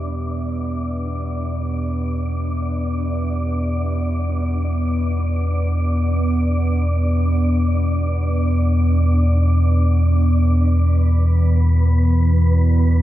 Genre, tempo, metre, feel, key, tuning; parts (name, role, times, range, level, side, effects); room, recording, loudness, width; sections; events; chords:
dark ambient drone; free time; E minor; A4 = 439 Hz
deep dark ambient pad; sustained chords; 0.0-13.0 s; E3 to E5; -24 LUFS; right 1 dB; chorus, built-in reverb
deep rumbling drone; drone; 0.0-13.0 s; E2 to B2; -17 LUFS; equal; built-in reverb, analog chorus
wind-like tuned noise texture; texture; 0.0-13.0 s; B3 to D5; -29 LUFS; right 1 dB; built-in reverb
light reverb; -16 LUFS; side -14 dB against mid
0.0-13.0 A section
fade-in on ambient pad 0.0-13.0; fade-in on synth texture 0.0-13.0; filter sweep on synth drone 0.0-13.0
0.0 Em; 10.4 Bm/E